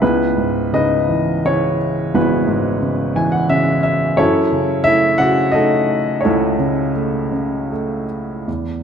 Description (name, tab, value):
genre	classical, lyrical solo piano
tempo	77-89 BPM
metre	3/4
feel	rubato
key	unclear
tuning	A4 = 438 Hz
part	warm upright piano	solo	0.0-8.8 s	G#1 to G#5	-15 LUFS	equal	none
room	moderate scoring stage reverb, RT60 1.5 s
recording	none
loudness	-15 LUFS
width	side -7 dB against mid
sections	0.0-8.5 A section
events	upright piano fill 2.8-4.2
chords	0.0 C#m7; 4.2 F#m7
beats	| 0.02 0.74 1.45 | 2.14 2.82 3.50 | 4.18 4.86 5.55 | 6.24 6.95 7.70 | 8.47